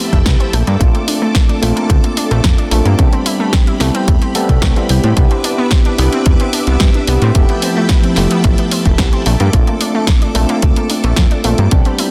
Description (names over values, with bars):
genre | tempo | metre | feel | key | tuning
nu-disco, nu disco | 110 BPM | 4/4 | straight | unclear | A4 = 440 Hz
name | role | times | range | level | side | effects
overdriven tine electric piano | accompaniment | 0.0-12.1 s | G3 to A4 | -21 LUFS | equal | phaser, sidechain pumping, tape echo
string machine, full ensemble | sustained chords | 0.0-12.1 s | F3 to D6 | -26 LUFS | equal | ensemble chorus, sidechain pumping
unison pluck | arpeggios | 0.0-12.1 s | A3 to G4 | -24 LUFS | equal | sidechain pumping, tape echo
fat analog bass | bass | 0.1-11.8 s | F1 to A2 | -16 LUFS | equal | tube saturation, sidechain pumping
electronic kick drum | drums | 0.1-11.8 s | none | -14 LUFS | equal | none
house drum kit | drums | 0.1-12.1 s | hi-hat, snare drum | -22 LUFS | equal | none
room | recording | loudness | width
light reverb, digital ambience | dense, heavily limited modern master | -13 LUFS | mono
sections
0.0-12.1 A section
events
none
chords
0.0 Fmaj9#11; 0.5 Bbmaj7; 3.0 Cmaj9; 7.4 Fmaj9#11; 9.3 Bbmaj7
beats
0.26 | 0.81 1.35 1.90 2.44 | 2.99 3.54 4.08 4.63 | 5.17 5.72 6.26 6.81 | 7.35 7.90 8.44 8.99 | 9.54 10.08 10.63 11.17 | 11.72